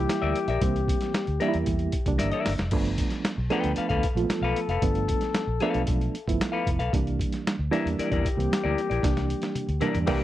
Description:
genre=funk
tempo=114 BPM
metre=4/4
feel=straight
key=unclear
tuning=A4 = 440 Hz
part: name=warm trombone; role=second line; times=0.0-10.2 s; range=G4 to A4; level=-32 LUFS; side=left 7 dB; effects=none
part: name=reed electric piano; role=stabs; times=0.0-10.2 s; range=D3 to F4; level=-29 LUFS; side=right 5 dB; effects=overdrive, fast tremolo
part: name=vintage muted fingered electric bass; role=bass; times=0.0-10.2 s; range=F1 to E2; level=-28 LUFS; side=equal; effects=none
part: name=boom bap sampler-style drum kit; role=drums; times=0.1-10.2 s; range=crash cymbal, hi-hat, kick drum, snare drum, toms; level=-28 LUFS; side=equal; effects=none
part: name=semi-hollow electric guitar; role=accompaniment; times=0.2-10.2 s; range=E4 to G5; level=-30 LUFS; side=left 5 dB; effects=spring reverb
room=little or no reverb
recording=dry, close 1970s-style studio recording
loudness=-24 LUFS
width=side -14 dB against mid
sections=0.0-10.2 A section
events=drum fill 2.2-2.7, 9.0-10.2; band accent 10.1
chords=0.0 C9; 2.7 G9; 6.9 C9

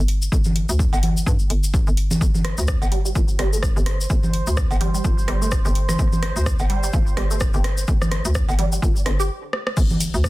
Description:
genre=minimal techno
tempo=127 BPM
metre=4/4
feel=swing 57% on 16ths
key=unclear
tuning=A4 = 440 Hz
part: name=hollow knocking FM bass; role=bass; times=0.0-10.3 s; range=G1 to G2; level=-22 LUFS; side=equal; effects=sidechain pumping
part: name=garage drum kit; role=drums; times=0.1-10.3 s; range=crash cymbal, hi-hat, rim click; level=-28 LUFS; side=equal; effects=soft clipping on snare
part: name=cabasa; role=percussion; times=0.2-10.3 s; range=none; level=-31 LUFS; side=left 3 dB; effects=none
part: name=electronic kick drum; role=drums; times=0.3-10.3 s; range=none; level=-21 LUFS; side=equal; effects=none
part: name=electronic congas, cowbell and rim click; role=percussion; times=0.5-10.0 s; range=none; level=-26 LUFS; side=right 1 dB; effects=soft clipping on snare
part: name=bubbling stepped-filter texture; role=texture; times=2.2-9.3 s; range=C5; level=-35 LUFS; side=right 3 dB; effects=chorus, built-in reverb, sidechain pumping
part: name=resonant blip pluck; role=riff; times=2.9-9.2 s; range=D3 to G4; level=-28 LUFS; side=right 3 dB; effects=phaser, sidechain pumping, digital delay
room=little or no reverb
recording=dense, heavily limited modern master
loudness=-18 LUFS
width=side -19 dB against mid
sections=0.0-9.8 A section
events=stop 9.3-9.8; drum fill 9.5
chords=0.0 G5

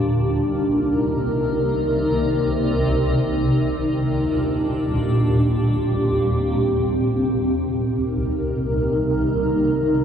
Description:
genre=hip hop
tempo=free time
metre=none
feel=none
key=unclear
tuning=A4 = 439 Hz
part: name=granular cloud pad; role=solo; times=0.0-10.0 s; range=C2 to Bb4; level=-18 LUFS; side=equal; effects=built-in reverb
room=moderate huge ambient reverb, RT60 7.1 s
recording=dark, warm production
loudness=-18 LUFS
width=side -8 dB against mid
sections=0.0-7.5 A section; 7.5-10.0 B section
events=none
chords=0.0 Cm7; 3.8 Ebmaj7; 7.5 Cm7

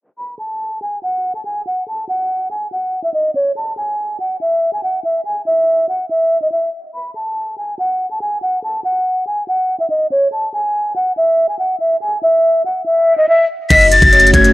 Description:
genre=hip hop, trap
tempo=142 BPM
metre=4/4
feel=half-time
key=F# dorian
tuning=A4 = 442 Hz
part: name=breathy mellow silver concert flute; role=melody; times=0.2-14.5 s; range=C#5 to B6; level=-14 LUFS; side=equal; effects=none
part: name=hollow clarinet-like synth lead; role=second line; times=13.7-14.5 s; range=C#5 to D#5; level=-17 LUFS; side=left 2 dB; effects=chorus
part: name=dark analog pad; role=sustained chords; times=13.9-14.5 s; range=C#3 to F#4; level=-16 LUFS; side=right 1 dB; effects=chorus
part: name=long sustained 808-style bass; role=bass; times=13.7-14.5 s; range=F#1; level=-14 LUFS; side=equal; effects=none
part: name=trap drum kit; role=drums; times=13.7-14.5 s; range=crash cymbal, hi-hat, kick drum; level=-14 LUFS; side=equal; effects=overdrive
room=digital ambience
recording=dry, gritty hardware recording, cassette tape, low-pass filter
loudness=-13 LUFS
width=side -19 dB against mid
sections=0.2-13.7 A section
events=filter sweep 0.2-13.7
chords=0.2 N.C.; 13.7 F#m

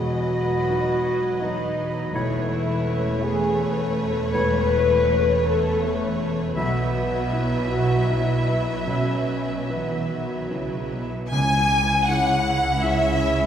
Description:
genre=cinematic, emotional film score for orchestra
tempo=73-83 BPM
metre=3/4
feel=rubato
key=unclear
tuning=A4 = 437 Hz
part: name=rich studio violin section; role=melody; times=0.0-13.5 s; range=C#5 to G#5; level=-32 LUFS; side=left 1 dB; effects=none
part: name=bright silver concert flute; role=second line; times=0.0-13.5 s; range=E5 to B5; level=-29 LUFS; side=left 2 dB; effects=none
part: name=rich studio violin section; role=second line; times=0.0-13.5 s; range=B4 to G#5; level=-29 LUFS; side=left 1 dB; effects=none
part: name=warm clarinet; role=second line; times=0.0-9.2 s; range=C#5 to E5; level=-33 LUFS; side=equal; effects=none
part: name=rich studio viola section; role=accompaniment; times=0.0-13.5 s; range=F#3 to E4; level=-31 LUFS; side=right 2 dB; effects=none
part: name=warm concert grand piano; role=accompaniment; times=0.0-13.5 s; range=E1 to E5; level=-28 LUFS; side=left 1 dB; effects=none
part: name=mellow French horn section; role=sustained chords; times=0.0-13.5 s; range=E3 to B4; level=-25 LUFS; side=left 2 dB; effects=none
part: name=warm studio cello section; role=bass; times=0.0-13.5 s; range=C#2 to E3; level=-30 LUFS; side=right 2 dB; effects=none
part: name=warm studio double bass section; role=bass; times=0.0-13.5 s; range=E1 to C#2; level=-30 LUFS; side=right 2 dB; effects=none
part: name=timpani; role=percussion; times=11.3-12.4 s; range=C#3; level=-28 LUFS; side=right 1 dB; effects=none
room=wet scoring stage reverb, RT60 1.7 s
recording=heard from further back in the room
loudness=-20 LUFS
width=side -9 dB against mid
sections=0.0-11.3 A section; 11.3-13.5 B section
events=none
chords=0.0 B/E; 2.2 Aadd9/E; 6.6 Bsus4; 11.3 C#m

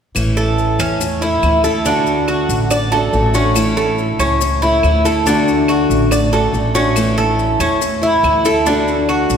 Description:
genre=latin, Cuban son and guajira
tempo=141 BPM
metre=4/4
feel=straight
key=A major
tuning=A4 = 439 Hz
part: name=picked steel-string acoustic guitar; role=accompaniment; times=0.1-9.4 s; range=D3 to F#4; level=-18 LUFS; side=left 1 dB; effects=none
part: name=upright bass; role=bass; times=0.2-9.4 s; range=A1 to E2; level=-19 LUFS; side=right 1 dB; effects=none
part: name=claves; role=percussion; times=0.2-9.3 s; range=none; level=-30 LUFS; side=right 2 dB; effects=none
part: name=maracas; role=percussion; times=0.2-9.4 s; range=none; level=-29 LUFS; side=left 7 dB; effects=none
part: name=Cuban tres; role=arpeggios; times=0.4-9.4 s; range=C#4 to D5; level=-16 LUFS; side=right 1 dB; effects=none
room=wet church reverb, RT60 2.8 s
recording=recorded in a church or concert hall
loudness=-13 LUFS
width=side -7 dB against mid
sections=0.2-9.4 A section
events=none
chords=0.2 A; 1.9 D; 3.6 A; 5.3 D; 7.0 A; 8.7 D

